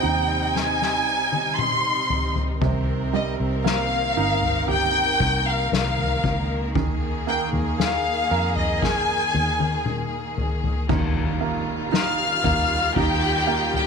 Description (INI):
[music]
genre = pop ballad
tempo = 58 BPM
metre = 4/4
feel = straight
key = unclear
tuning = A4 = 441 Hz
[part]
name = warm studio violin section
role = melody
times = 0.0-13.9 s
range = G4 to F6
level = -22 LUFS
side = left 2 dB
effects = none
[part]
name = clear upright piano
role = accompaniment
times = 0.0-13.9 s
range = C3 to Bb4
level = -29 LUFS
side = right 13 dB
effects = none
[part]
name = clear chamber string section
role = sustained chords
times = 0.0-13.9 s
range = C3 to Bb4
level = -30 LUFS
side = left 2 dB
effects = none
[part]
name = vintage muted fingered electric bass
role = bass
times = 0.0-13.9 s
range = G1 to F2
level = -27 LUFS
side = equal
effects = none
[part]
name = soft-mallet drum kit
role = drums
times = 0.6-13.9 s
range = crash cymbal, kick drum, snare drum, toms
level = -26 LUFS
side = left 3 dB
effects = none
[part]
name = impact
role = sound effects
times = 10.9-13.9 s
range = none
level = -34 LUFS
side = equal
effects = none
[sound]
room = light reverb, small room ambience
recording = 1960s-style stereo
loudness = -20 LUFS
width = side -5 dB against mid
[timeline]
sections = 0.0-10.9 A section; 10.9-13.9 B section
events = drum fill 0.5-2.6, 8.8-10.9; impact 10.9-13.9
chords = 0.0 Abmaj7; 2.6 Cm7; 6.8 Ebsus4; 10.9 Ebadd9